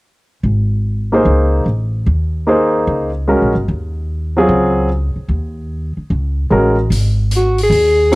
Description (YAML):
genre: modal jazz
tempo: 148 BPM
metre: 4/4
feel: swing 66% on 8ths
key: Ab mixolydian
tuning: A4 = 440 Hz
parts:
  - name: upright bass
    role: bass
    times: 0.4-8.2 s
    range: G1 to Eb2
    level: -16 LUFS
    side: equal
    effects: none
  - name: warm baby grand piano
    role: accompaniment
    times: 1.1-8.2 s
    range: Gb3 to C5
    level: -13 LUFS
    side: equal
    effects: cassette tape
  - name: swinging big-band drum kit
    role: drums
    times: 6.9-8.2 s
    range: hi-hat, rim click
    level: -26 LUFS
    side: left 1 dB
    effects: none
  - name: mellow alto saxophone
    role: melody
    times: 7.4-8.2 s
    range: Gb4 to Ab4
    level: -12 LUFS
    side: equal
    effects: cassette tape
room: light reverb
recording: home recording on cassette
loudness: -13 LUFS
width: side -22 dB against mid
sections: 0.4-6.9 A section; 6.9-8.2 B section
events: none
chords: 0.4 Ab9sus4; 6.9 Ab5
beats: | 0.45 0.85 1.26 1.66 | 2.07 2.47 2.88 3.28 | 3.68 4.09 4.49 4.89 | 5.30 5.70 6.11 6.51 | 6.91 7.32 7.72 8.12